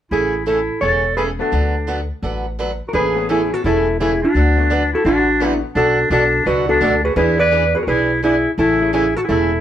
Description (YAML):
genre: country, western swing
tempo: 170 BPM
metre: 4/4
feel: swing 64% on 8ths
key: A major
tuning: A4 = 440 Hz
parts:
  - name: hollow-body jazz guitar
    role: melody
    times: 0.1-9.6 s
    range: D4 to D5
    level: -18 LUFS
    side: equal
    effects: none
  - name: bright clarinet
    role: second line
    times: 0.1-9.6 s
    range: D4 to B4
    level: -20 LUFS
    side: equal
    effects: none
  - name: picked acoustic archtop guitar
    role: accompaniment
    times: 0.1-9.5 s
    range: B2 to B4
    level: -23 LUFS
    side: right 2 dB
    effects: none
  - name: upright bass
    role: bass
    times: 0.1-9.6 s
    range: E1 to E2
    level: -22 LUFS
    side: equal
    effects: none
  - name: bright upright piano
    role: accompaniment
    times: 1.4-8.9 s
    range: A3 to A4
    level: -28 LUFS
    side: left 7 dB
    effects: none
room: moderate studio reverb, RT60 0.6 s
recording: band playing live in one room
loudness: -14 LUFS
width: side -10 dB against mid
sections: 0.1-2.9 A section; 2.9-9.6 B section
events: none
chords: 0.1 Amaj7; 1.5 D6; 2.9 Amaj9; 4.3 D6; 5.8 Bm7; 7.2 E7; 8.6 Amaj7